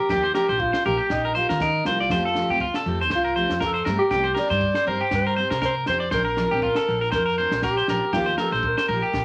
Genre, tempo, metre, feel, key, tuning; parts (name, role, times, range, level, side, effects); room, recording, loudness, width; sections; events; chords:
highlife guitar band; 120 BPM; 4/4; swing 55% on 16ths; Bb major; A4 = 441 Hz
breathy alto saxophone; melody; 0.0-9.2 s; Eb4 to D5; -27 LUFS; equal
electric guitar at the edge of break-up; arpeggios; 0.0-9.2 s; F4 to D5; -26 LUFS; equal; warbly pitch drift
picked steel-string acoustic guitar; accompaniment; 0.1-9.1 s; F3 to G4; -33 LUFS; equal
upright bass; bass; 0.1-9.2 s; Bb1 to Eb3; -32 LUFS; equal
compact cocktail drum kit; drums; 0.1-9.2 s; kick drum, snare drum; -34 LUFS; equal
moderate studio reverb, RT60 0.5 s; -23 LUFS; mono
0.0-9.2 A section
0.1 Ebadd9; 2.1 Fadd9; 4.1 Cm; 6.1 Bbadd9; 8.1 Ebadd9